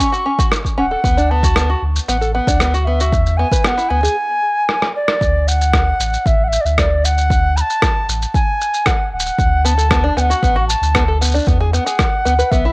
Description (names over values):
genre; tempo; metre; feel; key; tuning
folktronica; 115 BPM; 4/4; straight; D lydian; A4 = 440 Hz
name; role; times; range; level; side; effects
reedy wooden flute; melody; 0.0-12.7 s; D5 to C#6; -18 LUFS; equal; cassette tape, tape echo
open-back banjo; arpeggios; 0.0-4.2, 9.6-12.7 s; B3 to B4; -20 LUFS; equal; cassette tape
electronic kick drum; drums; 0.0-12.6 s; none; -17 LUFS; equal; cassette tape
electronic shaker and rim click; drums; 0.0-12.6 s; none; -20 LUFS; equal; cassette tape
warm sub bass; bass; 0.8-12.7 s; D1 to E2; -17 LUFS; equal; none
room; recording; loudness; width
light reverb; home recording on cassette; -13 LUFS; side -25 dB against mid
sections
0.0-5.2 A section; 5.2-12.7 A section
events
break 4.2-5.2; drum fill 4.7-5.2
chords
0.0 Dmaj7; 1.0 Bm7/D; 3.1 E; 5.2 D; 9.4 Bm7/D; 11.5 E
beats
0.52 | 1.04 1.56 2.08 2.60 | 3.12 3.65 4.17 4.69 | 5.21 5.73 6.25 6.78 | 7.30 7.82 8.34 8.86 | 9.38 9.91 10.43 10.95 | 11.47 11.99 12.52